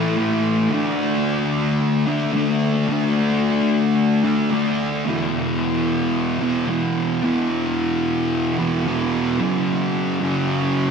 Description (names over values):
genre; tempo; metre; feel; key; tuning
rock; 110 BPM; 4/4; straight; unclear; A4 = 440 Hz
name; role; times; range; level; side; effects
thick fuzz guitar; solo; 0.0-10.9 s; E2 to D4; -18 LUFS; equal; distortion, lush chorus, diffuse ambient delay
room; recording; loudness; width
wet lush hall reverb, RT60 2.6 s; dreamy mix soaked in reverb; -18 LUFS; side -6 dB against mid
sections
0.0-9.4 A section; 9.4-10.9 B section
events
none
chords
0.0 A5; 0.7 D5; 5.1 E5; 9.4 F#5